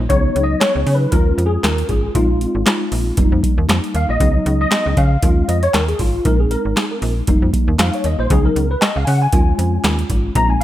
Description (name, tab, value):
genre	early-eighties boogie funk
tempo	117 BPM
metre	4/4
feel	swing 56% on 16ths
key	unclear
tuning	A4 = 440 Hz
part	tine electric piano	accompaniment	0.0-10.6 s	Gb3 to Bb5	-19 LUFS	left 2 dB	ensemble chorus
part	slap-like FM bass	bass	0.0-10.6 s	F1 to Db3	-18 LUFS	equal	none
part	booming analog drum machine	drums	0.1-10.6 s	handclaps, hi-hat, kick drum, snare drum	-17 LUFS	equal	none
room	little or no reverb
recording	none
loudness	-14 LUFS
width	side -13 dB against mid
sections	0.0-10.6 A section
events	tine electric piano solo 0.0-10.6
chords	0.1 Db9sus4; 1.1 Eb9sus4; 2.1 Bb9sus4; 3.2 F9sus4; 4.2 Db9sus4; 5.2 Eb9sus4; 6.3 Bb9sus4; 7.3 F9sus4; 8.3 Db9sus4; 9.3 Eb9sus4